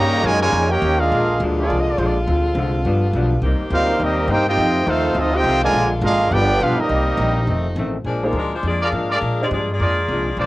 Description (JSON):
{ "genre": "jazz", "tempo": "208 BPM", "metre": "4/4", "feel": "swing 60% on 8ths", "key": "Bb major", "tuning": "A4 = 439 Hz", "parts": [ { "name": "clear trumpet section", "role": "melody", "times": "0.0-7.7 s", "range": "Bb3 to Bb5", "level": "-20 LUFS", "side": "equal", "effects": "cassette tape" }, { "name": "bright trombone section", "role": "second line", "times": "0.0-7.7 s", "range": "Bb2 to G4", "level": "-21 LUFS", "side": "right 2 dB", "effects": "cassette tape" }, { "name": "vintage hollow-body jazz guitar", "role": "accompaniment", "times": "0.0-10.5 s", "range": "F2 to G4", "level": "-26 LUFS", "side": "left 2 dB", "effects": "cassette tape" }, { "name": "warm saxophone section", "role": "sustained chords", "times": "0.0-8.1 s", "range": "C3 to G4", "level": "-26 LUFS", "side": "left 1 dB", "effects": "cassette tape" }, { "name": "upright bass", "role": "bass", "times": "0.0-10.5 s", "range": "F1 to Bb2", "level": "-21 LUFS", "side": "equal", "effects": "none" }, { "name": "clear saxophone section", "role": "melody", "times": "8.1-10.5 s", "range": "F3 to F5", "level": "-23 LUFS", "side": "left 2 dB", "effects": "cassette tape" }, { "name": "warm baby grand piano", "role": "accompaniment", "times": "8.2-9.5 s", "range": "Bb3 to Eb5", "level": "-23 LUFS", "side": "equal", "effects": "cassette tape" }, { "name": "clear trumpet section", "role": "stabs", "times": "8.8-10.5 s", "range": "F4 to D5", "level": "-22 LUFS", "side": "right 1 dB", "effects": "cassette tape" } ], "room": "light reverb", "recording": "home recording on cassette", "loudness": "-16 LUFS", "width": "side -18 dB against mid", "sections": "0.0-8.1 A section; 8.1-10.5 B section", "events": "none", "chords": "0.0 Eb7; 1.1 Bb7; 2.3 Dm7b5; 2.9 G7; 3.4 Cm7; 4.6 F7; 5.7 Bb7; 6.3 G7; 6.9 Cm7; 7.5 F7; 8.1 Bb7", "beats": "0.25 0.54 0.83 | 1.12 1.41 1.70 1.98 | 2.27 2.56 2.85 3.14 | 3.43 3.71 4.00 4.29 | 4.58 4.87 5.16 5.45 | 5.74 6.03 6.32 6.61 | 6.89 7.18 7.47 7.76 | 8.05 8.34 8.63 8.93 | 9.22 9.51 9.80 10.09 | 10.38" }